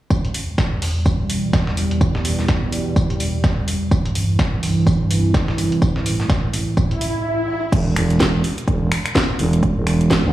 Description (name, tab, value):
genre	bass house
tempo	126 BPM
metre	4/4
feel	swing 59% on 16ths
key	E minor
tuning	A4 = 440 Hz
part	sweeping resonant pad	sustained chords	0.1-7.2 s	C2 to G3	-20 LUFS	right 1 dB	chorus, sidechain pumping
part	dusty soul sampler-style drum kit	drums	0.1-7.1 s	hi-hat, snare drum, tambourine	-29 LUFS	equal	high-pass filter on perc, high-pass filter on hats, high-pass filter on snare, high-pass filter on room
part	electronic kick drum	drums	0.1-10.2 s	none	-18 LUFS	equal	none
part	house drum kit	drums	0.3-10.2 s	crash cymbal, finger snaps, hi-hat, snare drum	-23 LUFS	equal	none
part	swell	sound effects	6.9-7.7 s	none	-22 LUFS	equal	none
part	growling FM bass	bass	7.7-10.3 s	E1 to D2	-17 LUFS	right 1 dB	sidechain pumping
room	light reverb, digital ambience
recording	played on a big sound system in a bare room, large studio reverb, small room ambience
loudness	-16 LUFS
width	side -14 dB against mid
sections	0.1-7.7 A section; 7.7-10.3 B section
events	swell 6.9-7.7; stop 7.2-7.7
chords	0.1 Em; 3.9 C; 7.7 N.C.